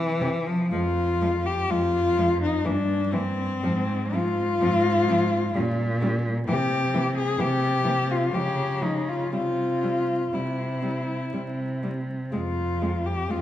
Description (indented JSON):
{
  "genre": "classical, lyrical piece for cello ensemble",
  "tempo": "62 BPM",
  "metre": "3/4",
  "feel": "uneven beats, rubato",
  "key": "F minor",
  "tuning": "A4 = 440 Hz",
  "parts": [
    { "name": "clear cello", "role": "accompaniment", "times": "0.0-13.4 s", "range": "E3 to Ab3", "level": "-31 LUFS", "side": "left 1 dB", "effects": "none" },
    { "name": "rich cello", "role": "melody", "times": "0.2-13.4 s", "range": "C4 to Ab4", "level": "-25 LUFS", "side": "left 3 dB", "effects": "none" },
    { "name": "rich cello", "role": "bass", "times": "0.2-13.4 s", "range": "F2 to Db3", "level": "-27 LUFS", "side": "right 1 dB", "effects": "none" },
    { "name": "rich cello", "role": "second line", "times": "0.7-13.4 s", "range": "Ab3 to Db4", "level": "-38 LUFS", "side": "right 4 dB", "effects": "none" }
  ],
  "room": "wet recital hall reverb, RT60 1.5 s",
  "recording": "dark, warm production, vinyl crackle",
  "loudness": "-22 LUFS",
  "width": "side -12 dB against mid",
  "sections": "0.7-13.4 A section",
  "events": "none",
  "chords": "0.0 N.C.; 3.6 Fm/Ab; 5.5 N.C.; 6.5 C; 8.3 Db; 9.3 C; 12.3 Fm",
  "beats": "| 0.72 1.70 2.65 | 3.63 4.62 5.55 | 6.48 7.39 8.33 | 9.32 10.32 11.32 | 12.32 13.29"
}